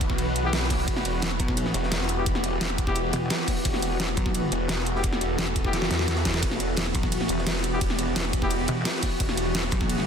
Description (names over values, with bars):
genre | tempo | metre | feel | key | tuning
dark technical drum and bass | 173 BPM | 4/4 | straight | E minor | A4 = 441 Hz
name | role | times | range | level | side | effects
swarming drone | sustained chords | 0.0-10.1 s | E3 to B4 | -29 LUFS | equal | built-in reverb, sidechain pumping
snarling distorted saw bass | bass | 0.0-9.7 s | E1 to E2 | -29 LUFS | equal | distortion, sidechain pumping
crunchy breakbeat drum kit | drums | 0.0-10.1 s | hi-hat, ride cymbal, snare drum | -38 LUFS | equal | none
dubstep drum kit | drums | 0.0-10.1 s | hi-hat, ride cymbal, snare drum | -29 LUFS | equal | overdrive
electronic kick drum | drums | 0.0-9.9 s | none | -28 LUFS | equal | none
bright brass ensemble | stabs | 0.4-8.5 s | B3 to G4 | -34 LUFS | left 3 dB | digital delay
pulsing pluck wobble bass | bass | 1.4-4.5, 6.9-10.1 s | E1 to B1 | -28 LUFS | equal | chorus
room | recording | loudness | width
light reverb, studio ambience | dense, heavily limited modern master | -23 LUFS | side -7 dB against mid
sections
0.0-10.1 A section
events
drum fill 5.7-6.4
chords
0.0 Em